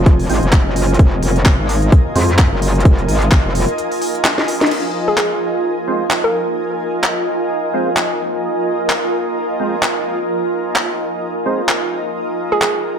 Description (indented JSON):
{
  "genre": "bass house",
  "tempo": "129 BPM",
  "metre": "4/4",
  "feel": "swing 57% on 16ths",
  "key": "F minor",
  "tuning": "A4 = 441 Hz",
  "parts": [
    { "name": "hollow square pluck", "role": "melody", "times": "0.0-0.3, 5.1-6.9, 12.5-12.7 s", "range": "F4 to Bb4", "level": "-20 LUFS", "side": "right 1 dB", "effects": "chorus, digital delay" },
    { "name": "metallic wobble bass", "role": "bass", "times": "0.0-3.7 s", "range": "F1 to F2", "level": "-16 LUFS", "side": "equal", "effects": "distortion, chorus, tube saturation, sidechain pumping" },
    { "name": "granular cloud pad", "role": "texture", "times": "0.0-13.0 s", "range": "F4 to Ab5", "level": "-19 LUFS", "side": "right 1 dB", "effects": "built-in reverb, sidechain pumping" },
    { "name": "electronic kick drum", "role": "drums", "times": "0.1-3.4 s", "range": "none", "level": "-12 LUFS", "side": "equal", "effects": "none" },
    { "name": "garage drum kit", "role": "drums", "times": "0.1-12.7 s", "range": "crash cymbal, handclaps, hi-hat, snare drum", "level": "-19 LUFS", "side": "equal", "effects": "none" },
    { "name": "percussive organ stab", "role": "stabs", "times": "0.3-2.3, 5.9-11.6 s", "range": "Ab3 to C5", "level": "-22 LUFS", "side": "right 3 dB", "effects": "ensemble chorus, sidechain pumping, digital delay" }
  ],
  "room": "light reverb",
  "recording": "none",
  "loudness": "-14 LUFS",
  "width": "side -8 dB against mid",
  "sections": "0.0-4.7 A section; 4.7-13.0 B section",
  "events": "break 3.8-4.7; drum fill 4.2-4.7; band accent 4.6",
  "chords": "0.0 Fm"
}